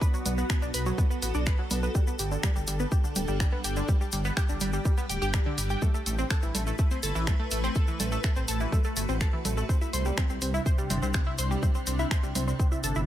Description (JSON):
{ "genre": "melodic techno", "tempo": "124 BPM", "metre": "4/4", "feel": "straight", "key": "unclear", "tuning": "A4 = 440 Hz", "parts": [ { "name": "evolving wavetable pad", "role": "sustained chords", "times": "0.0-13.1 s", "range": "C3 to B4", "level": "-36 LUFS", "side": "equal", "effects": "ensemble chorus, built-in reverb, phaser, sidechain pumping" }, { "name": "tight sequenced synth", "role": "arpeggios", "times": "0.0-13.0 s", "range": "D3 to C6", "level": "-33 LUFS", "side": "equal", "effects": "chorus, sidechain pumping, tape echo" }, { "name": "electronic kick drum", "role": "drums", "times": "0.0-12.7 s", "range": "none", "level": "-26 LUFS", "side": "equal", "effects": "none" }, { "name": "egg shaker", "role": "percussion", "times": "0.0-13.1 s", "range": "none", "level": "-38 LUFS", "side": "left 3 dB", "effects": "none" }, { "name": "swelling detuned saw bass", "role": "bass", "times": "0.3-13.1 s", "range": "D1 to C2", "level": "-30 LUFS", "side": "equal", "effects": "sidechain pumping" }, { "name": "punchy analog drum machine", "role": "drums", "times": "0.3-12.9 s", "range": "congas, finger snaps, hi-hat", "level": "-34 LUFS", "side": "right 1 dB", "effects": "none" } ], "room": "digital ambience", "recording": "none", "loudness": "-25 LUFS", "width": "side -12 dB against mid", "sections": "0.0-13.1 A section", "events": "none", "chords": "0.0 Bm7; 1.9 G; 5.8 Amadd9; 9.7 C", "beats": "| 0.01 0.50 0.98 1.47 | 1.95 2.43 2.92 3.40 | 3.88 4.37 4.85 5.34 | 5.82 6.30 6.79 7.27 | 7.76 8.24 8.72 9.21 | 9.69 10.18 10.66 11.14 | 11.63 12.11 12.60" }